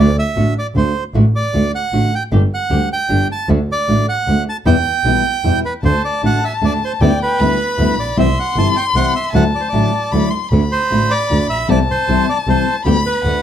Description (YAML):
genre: tango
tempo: 154 BPM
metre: 3/4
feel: rubato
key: unclear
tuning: A4 = 437 Hz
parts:
  - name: bandoneon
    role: melody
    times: 0.0-13.4 s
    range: B4 to A5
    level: -19 LUFS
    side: right 4 dB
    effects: none
  - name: flamenco guitar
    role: accompaniment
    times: 0.0-13.4 s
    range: B2 to A4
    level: -18 LUFS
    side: left 1 dB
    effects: none
  - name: clear double bass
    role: bass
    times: 0.0-13.4 s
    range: G1 to E2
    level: -17 LUFS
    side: equal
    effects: none
  - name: warm violin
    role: second line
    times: 5.8-13.4 s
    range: F#5 to C6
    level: -20 LUFS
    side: left 5 dB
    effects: none
room: light reverb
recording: close, detailed microphones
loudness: -13 LUFS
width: side -10 dB against mid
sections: 0.0-13.4 A section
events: none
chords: 0.0 D; 2.3 G5; 3.5 D; 4.7 Em; 5.8 D; 7.0 G6/D; 8.2 C; 9.3 Dadd9; 10.5 D; 11.7 Am7/C; 12.9 G/D